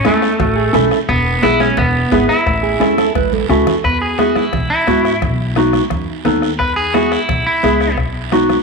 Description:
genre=latin, cumbia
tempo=174 BPM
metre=4/4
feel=straight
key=E major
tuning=A4 = 439 Hz
part: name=electric guitar at the edge of break-up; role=melody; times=0.0-8.0 s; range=A3 to B4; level=-18 LUFS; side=equal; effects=spring reverb
part: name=mellow electric guitar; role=accompaniment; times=0.0-8.6 s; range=B3 to A4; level=-16 LUFS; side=left 1 dB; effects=none
part: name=bombo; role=percussion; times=0.0-8.6 s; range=none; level=-24 LUFS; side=left 6 dB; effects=none
part: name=upright bass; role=bass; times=0.1-8.5 s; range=E1 to G#2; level=-21 LUFS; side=equal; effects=none
part: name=congas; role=percussion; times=0.1-8.6 s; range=none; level=-23 LUFS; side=right 12 dB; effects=none
part: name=guiro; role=percussion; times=0.1-8.6 s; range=none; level=-30 LUFS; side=right 15 dB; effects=none
part: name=mellow electric guitar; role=second line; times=0.4-3.8 s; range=F#4 to B4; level=-21 LUFS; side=right 12 dB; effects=none
room=light reverb, studio reverb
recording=1960s-style stereo with parts hard left and right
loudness=-12 LUFS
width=side -3 dB against mid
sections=0.0-3.8 A section; 3.8-8.6 B section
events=drum fill 3.2-3.8; clean electric guitar solo 3.8-8.6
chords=0.0 A; 1.1 E; 2.5 A; 3.8 E; 5.2 B7; 6.6 E; 8.0 B

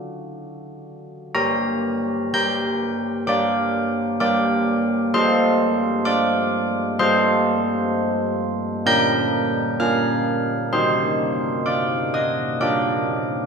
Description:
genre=classical, tune for church bells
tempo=64 BPM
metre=4/4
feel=straight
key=G minor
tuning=A4 = 440 Hz
part: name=carillon bells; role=solo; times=0.0-13.5 s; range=G3 to G6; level=-19 LUFS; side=equal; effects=none
room=wet recital hall reverb, RT60 1.9 s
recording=heard from further back in the room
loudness=-18 LUFS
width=side -5 dB against mid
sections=0.0-1.3 A section; 1.3-13.5 B section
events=none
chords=0.0 D; 1.3 Gm; 5.1 F/G; 8.9 Bb; 10.7 Cm; 12.6 Gm/D

